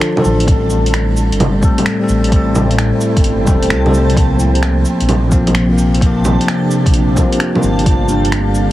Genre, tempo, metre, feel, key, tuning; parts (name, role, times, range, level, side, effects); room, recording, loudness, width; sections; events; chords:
future garage; 130 BPM; 4/4; swing 67% on 16ths; A4 = 444 Hz
bell-like tine electric piano; accompaniment; 0.0-8.7 s; F3 to A4; -16 LUFS; left 2 dB; phaser, sidechain pumping, tape echo
ethereal airy pad; sustained chords; 0.0-8.7 s; A2 to A5; -20 LUFS; right 1 dB; ensemble chorus, built-in reverb, sidechain pumping
deep house drum kit; drums; 0.0-8.7 s; bongos, cabasa, finger snaps, hi-hat; -19 LUFS; right 1 dB
backwards swelling texture; texture; 0.4-8.7 s; A3 to A5; -26 LUFS; equal; built-in reverb
dark detuned saw bass; bass; 0.2-8.7 s; E1 to C2; -16 LUFS; equal; sidechain pumping
electronic kick drum; drums; 0.5-8.0 s; -14 LUFS; equal
light reverb, digital ambience; heavily compressed radio sound, multiband compression, vinyl crackle; -11 LUFS; side -14 dB against mid
0.0-8.7 A section
0.5 Am7; 4.2 C7sus4